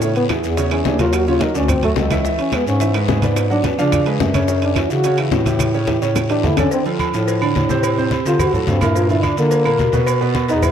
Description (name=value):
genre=Afro-Cuban jazz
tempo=215 BPM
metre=4/4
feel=straight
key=D minor from 6.7 s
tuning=A4 = 440 Hz
part: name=trombone with bucket mute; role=melody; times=0.0-10.7 s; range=A3 to F#4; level=-20 LUFS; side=left 1 dB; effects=ping-pong delay
part: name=warm concert grand piano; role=accompaniment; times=0.0-10.7 s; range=Bb2 to F#5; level=-21 LUFS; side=right 4 dB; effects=none
part: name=mellow bass clarinet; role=bass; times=0.0-10.7 s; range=C#2 to D3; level=-20 LUFS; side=equal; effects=none
part: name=bongos and cowbell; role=percussion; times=0.0-10.7 s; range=none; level=-27 LUFS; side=left 10 dB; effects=none
part: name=congas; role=percussion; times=0.0-10.7 s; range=none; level=-23 LUFS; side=left 1 dB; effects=none
part: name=guiro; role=percussion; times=0.0-10.7 s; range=none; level=-33 LUFS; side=left 11 dB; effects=none
part: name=maracas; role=percussion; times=0.0-10.7 s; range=none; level=-36 LUFS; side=right 11 dB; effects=none
part: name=timbales and agogo bells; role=percussion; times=0.2-10.7 s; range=none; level=-28 LUFS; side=right 6 dB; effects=none
part: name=claves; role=percussion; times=0.3-10.7 s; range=none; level=-34 LUFS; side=right 10 dB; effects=none
room=light reverb, small room ambience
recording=none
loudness=-15 LUFS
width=side -8 dB against mid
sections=0.0-6.7 A section; 6.7-10.7 A section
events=trombone solo 0.0-10.7; drum fill 5.6-6.7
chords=0.0 Amaj7; 1.1 D#m7; 1.7 Dadd9; 2.2 C#m7; 3.4 G#m7b5; 3.9 C#7; 4.5 F#m7; 5.6 A7; 6.7 Dm7; 7.8 Amadd11; 8.4 D7b13; 9.0 Gm7; 10.1 Badd11